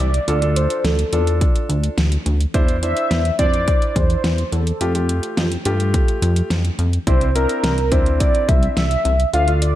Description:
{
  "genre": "synth-pop",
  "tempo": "106 BPM",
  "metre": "4/4",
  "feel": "straight",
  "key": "C mixolydian",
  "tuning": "A4 = 440 Hz",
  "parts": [
    { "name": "warm velvety synth lead", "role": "melody", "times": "0.0-9.8 s", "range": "A4 to F5", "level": "-22 LUFS", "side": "equal", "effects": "chorus, digital delay" },
    { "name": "chorused synth bass", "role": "bass", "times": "0.0-9.7 s", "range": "C2 to G2", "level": "-18 LUFS", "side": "equal", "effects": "none" },
    { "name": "pop drum kit", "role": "drums", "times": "0.0-9.8 s", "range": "hi-hat, kick drum, snare drum", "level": "-20 LUFS", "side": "equal", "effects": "gated reverb" },
    { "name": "downlifter", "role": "sound effects", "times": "0.0-2.5 s", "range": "none", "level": "-42 LUFS", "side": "equal", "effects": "none" },
    { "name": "clear concert grand piano", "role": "accompaniment", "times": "0.3-9.8 s", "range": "A3 to C5", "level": "-25 LUFS", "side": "equal", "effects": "none" }
  ],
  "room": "light reverb",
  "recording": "none",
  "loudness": "-16 LUFS",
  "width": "side -13 dB against mid",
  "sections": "0.0-9.8 A section",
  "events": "none",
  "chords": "0.3 Dm; 2.5 Cadd9/E; 4.8 Fadd9; 7.1 Cadd9",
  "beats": "| 0.28 0.84 1.41 1.98 | 2.54 3.11 3.67 4.24 | 4.81 5.37 5.94 6.50 | 7.07 7.64 8.20 8.77 | 9.34"
}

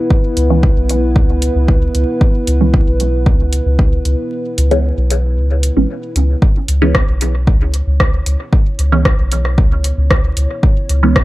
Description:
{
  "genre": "dub techno",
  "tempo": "114 BPM",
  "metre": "4/4",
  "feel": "straight",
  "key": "C# minor",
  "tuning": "A4 = 440 Hz",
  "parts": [
    { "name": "dark analog pad", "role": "sustained chords", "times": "0.0-11.2 s", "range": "B3 to C#5", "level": "-22 LUFS", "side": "equal", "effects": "lush chorus, sidechain pumping" },
    { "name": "electronic kick drum", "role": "drums", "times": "0.1-11.2 s", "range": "none", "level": "-12 LUFS", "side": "equal", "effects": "none" },
    { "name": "soft dub sub bass", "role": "bass", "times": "0.4-11.2 s", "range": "G#1 to C#2", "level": "-14 LUFS", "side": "equal", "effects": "sidechain pumping" },
    { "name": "punchy analog drum machine", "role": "drums", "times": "0.4-11.2 s", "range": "hi-hat, rim click", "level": "-19 LUFS", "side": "equal", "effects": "dub echo" },
    { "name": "filtered dub chord stab", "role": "stabs", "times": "0.5-11.2 s", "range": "E3 to C#4", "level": "-17 LUFS", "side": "right 2 dB", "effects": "phaser, sidechain pumping, dub echo" }
  ],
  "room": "digital ambience",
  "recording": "vinyl crackle",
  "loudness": "-12 LUFS",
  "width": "side -17 dB against mid",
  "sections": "0.0-6.4 A section; 6.4-11.2 A section",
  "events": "filter sweep on synth stab 0.0-6.4; kick drops out 4.3-6.4",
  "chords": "0.0 C#m7",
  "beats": "| 0.10 0.63 1.16 1.68 | 2.21 2.74 3.26 3.79 | 4.32 4.84 5.37 5.89 | 6.42 6.95 7.47 8.00 | 8.53 9.05 9.58 10.11 | 10.63 11.16"
}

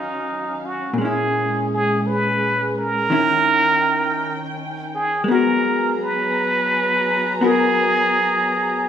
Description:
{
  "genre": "jazz ballad",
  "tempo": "56 BPM",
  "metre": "4/4",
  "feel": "swing 68% on 8ths",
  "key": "Eb minor",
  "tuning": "A4 = 440 Hz",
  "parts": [
    { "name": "trumpet with plunger mute", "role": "melody", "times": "0.0-8.9 s", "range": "Eb4 to Cb5", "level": "-19 LUFS", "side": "right 2 dB", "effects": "none" },
    { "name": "vintage hollow-body jazz guitar", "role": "accompaniment", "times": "0.0-8.9 s", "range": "Bb2 to Bb4", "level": "-23 LUFS", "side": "left 2 dB", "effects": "none" },
    { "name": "warm symphonic string section", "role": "sustained chords", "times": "0.0-8.9 s", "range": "Eb3 to Bb5", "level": "-26 LUFS", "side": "equal", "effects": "none" }
  ],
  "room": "wet large studio reverb, RT60 1.4 s",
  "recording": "minimal, uncompressed stereo recording",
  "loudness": "-17 LUFS",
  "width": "side -9 dB against mid",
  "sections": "0.0-8.9 A section",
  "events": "none",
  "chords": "0.0 Ebm9; 1.0 Bbm7b5; 3.1 Eb7b9; 5.3 Abm9",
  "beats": "| 0.95 2.03 3.10 4.18 | 5.26 6.33 7.41 8.48"
}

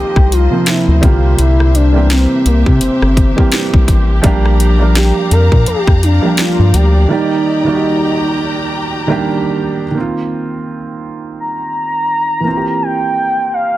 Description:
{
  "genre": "contemporary R&B",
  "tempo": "84 BPM",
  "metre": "4/4",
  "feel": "swing 58% on 16ths",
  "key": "unclear",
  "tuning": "A4 = 440 Hz",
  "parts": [
    { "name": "gliding portamento lead", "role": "melody", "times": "0.0-13.8 s", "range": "Bb3 to Bb5", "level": "-16 LUFS", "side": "equal", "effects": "chorus, tape echo" },
    { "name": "dark concert grand piano", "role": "accompaniment", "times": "0.0-13.8 s", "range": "C3 to D5", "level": "-17 LUFS", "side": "right 3 dB", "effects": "none" },
    { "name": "warm studio string section", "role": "sustained chords", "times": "0.0-9.9 s", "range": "F3 to Bb5", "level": "-24 LUFS", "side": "left 2 dB", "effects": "none" },
    { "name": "round analog bass", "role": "bass", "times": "0.0-7.1 s", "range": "G1 to C3", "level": "-11 LUFS", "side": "equal", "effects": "none" },
    { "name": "trap drum kit", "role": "drums", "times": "0.2-6.9 s", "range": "hi-hat, kick drum, rim click, snare drum", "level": "-13 LUFS", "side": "left 1 dB", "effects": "none" }
  ],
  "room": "little or no reverb",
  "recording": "dense, heavily limited modern master",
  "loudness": "-10 LUFS",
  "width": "side -15 dB against mid",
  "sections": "0.0-10.0 A section; 10.0-13.8 B section",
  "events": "break 7.1-10.0",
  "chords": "0.0 F7sus4; 1.0 C7; 4.2 Bb6; 7.1 Ebmaj7; 10.0 F7sus4; 12.5 C7",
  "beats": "0.67 | 1.38 2.10 2.81 3.53 | 4.24 4.96 5.67 6.38 | 7.10 7.81 8.53 9.24 | 9.96 10.67 11.38 12.10 | 12.81 13.53"
}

